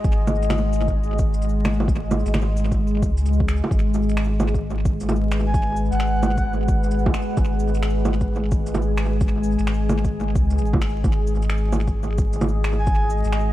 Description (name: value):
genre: future garage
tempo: 131 BPM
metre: 4/4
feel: swing 65% on 16ths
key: G# minor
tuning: A4 = 442 Hz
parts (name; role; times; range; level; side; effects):
- deep dark ambient pad; sustained chords; 0.0-13.5 s; G#3 to G#5; -26 LUFS; left 1 dB; chorus, built-in reverb, sidechain pumping
- warm sub bass; bass; 0.0-13.5 s; G#1 to C#2; -22 LUFS; equal; sidechain pumping
- electronic kick drum; drums; 0.0-13.0 s; none; -22 LUFS; equal; overdrive, vintage 12-bit sampler grit
- electronic shaker, bongos, cabasa and finger snaps; drums; 0.0-13.4 s; none; -28 LUFS; right 1 dB; overdrive, vintage 12-bit sampler grit, tape echo
- breathy flute-like synth lead; melody; 5.5-6.5, 12.8-13.1 s; F#5 to G#5; -30 LUFS; right 1 dB; chorus, tremolo, dub echo
room: light reverb, digital ambience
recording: echo-heavy mix, vinyl crackle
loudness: -19 LUFS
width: side -14 dB against mid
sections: 0.0-3.7 A section; 3.7-13.5 A section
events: none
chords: 0.0 D#m/G#; 3.7 G#m7; 11.0 D#m/G#